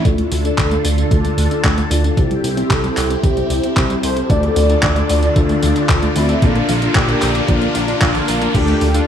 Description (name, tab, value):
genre	italo disco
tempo	113 BPM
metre	4/4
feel	straight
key	D minor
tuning	A4 = 440 Hz
part	analog synth brass	melody	0.0-9.1 s	C4 to D5	-21 LUFS	left 1 dB	chorus, tape echo
part	phased string machine	sustained chords	0.0-9.1 s	D3 to A4	-23 LUFS	equal	ensemble chorus, phaser
part	analog pluck	arpeggios	0.0-9.1 s	C3 to Bb4	-24 LUFS	right 2 dB	chorus, tape echo
part	chorused polysynth	stabs	0.1-9.1 s	Bb3 to D5	-24 LUFS	left 3 dB	none
part	chorused synth bass	bass	0.1-9.0 s	Bb1 to D2	-19 LUFS	equal	none
part	electronic kick drum	drums	0.1-8.7 s	none	-17 LUFS	equal	overdrive
part	gated 80s digital drum machine	drums	0.1-9.1 s	crash cymbal, handclaps, hi-hat, tambourine	-23 LUFS	equal	gated reverb, overdrive
part	riser	sound effects	2.4-8.5 s	none	-27 LUFS	equal	none
room	moderate plate reverb, RT60 2.4 s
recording	studio ambience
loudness	-13 LUFS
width	side -9 dB against mid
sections	0.1-8.5 A section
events	filter sweep on synth arpeggio sound 0.1-8.5; filter sweep on analog polysynth 0.1-8.5; riser 2.4-8.5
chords	0.1 Dm; 2.2 C; 4.3 Dm; 6.4 Bb; 8.5 Dm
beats	| 0.05 0.58 1.11 1.64 | 2.17 2.71 3.24 3.77 | 4.30 4.83 5.36 5.89 | 6.42 6.95 7.48 8.02 | 8.55